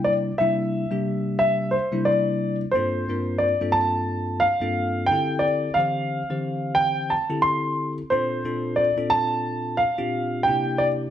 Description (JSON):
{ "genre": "jazz", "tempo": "89 BPM", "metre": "4/4", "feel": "swing 54% on 16ths", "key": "unclear", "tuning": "A4 = 441 Hz", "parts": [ { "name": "dark grand piano", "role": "melody", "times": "0.0-10.9 s", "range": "C5 to C6", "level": "-22 LUFS", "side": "equal", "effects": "none" }, { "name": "bell-like tine electric piano", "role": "accompaniment", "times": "0.0-11.1 s", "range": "G2 to C5", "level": "-26 LUFS", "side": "left 1 dB", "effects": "none" } ], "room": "wet stone room reverb, RT60 1.1 s", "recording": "band playing live in one room", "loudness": "-21 LUFS", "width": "side -10 dB against mid", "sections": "0.0-11.1 A section", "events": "none", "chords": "0.0 C9; 2.8 Gm11; 5.1 D7sus4; 8.1 Bbmaj9; 10.5 C9" }